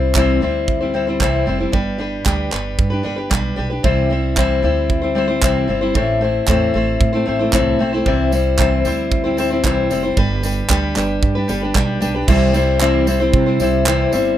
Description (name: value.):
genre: acoustic pop.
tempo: 114 BPM.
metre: 4/4.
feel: straight.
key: C major.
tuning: A4 = 442 Hz.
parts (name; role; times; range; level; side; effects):
picked steel-string acoustic guitar; accompaniment; 0.0-14.4 s; A2 to C5; -17 LUFS; left 2 dB; none.
upright bass; bass; 0.0-14.4 s; F1 to C3; -21 LUFS; right 1 dB; none.
modern studio drum kit; drums; 0.1-14.2 s; crash cymbal, handclaps, kick drum, tambourine; -20 LUFS; right 2 dB; none.
mellow tonewheel organ; sustained chords; 12.3-14.4 s; G3 to C5; -25 LUFS; right 7 dB; none.
room: little or no reverb.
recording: close, detailed microphones.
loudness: -15 LUFS.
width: side -12 dB against mid.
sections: 0.0-12.3 A section; 12.3-14.4 B section.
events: none.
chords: 0.0 C; 1.7 G; 3.8 C; 6.0 Am; 8.1 C; 10.2 G; 12.3 C.